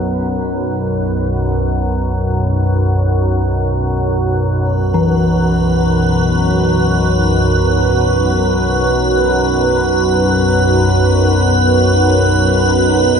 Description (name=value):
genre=dark ambient drone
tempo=free time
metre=none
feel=none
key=unclear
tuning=A4 = 442 Hz
part: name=gamelan-type bronze metallophone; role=arpeggios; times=0.0-11.9 s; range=E3 to B3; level=-20 LUFS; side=left 2 dB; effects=ping-pong delay
part: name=organ-like drone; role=drone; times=0.0-13.2 s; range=B1 to F#2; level=-13 LUFS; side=equal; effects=ensemble chorus, built-in reverb
part: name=icy glass pad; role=texture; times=5.0-13.2 s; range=B4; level=-17 LUFS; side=right 3 dB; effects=chorus, built-in reverb, shimmer reverb
room=wet huge ambient reverb, RT60 7.6 s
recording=none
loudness=-12 LUFS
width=side -6 dB against mid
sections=0.0-4.6 A section; 4.6-13.2 B section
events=none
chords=0.0 B5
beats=free time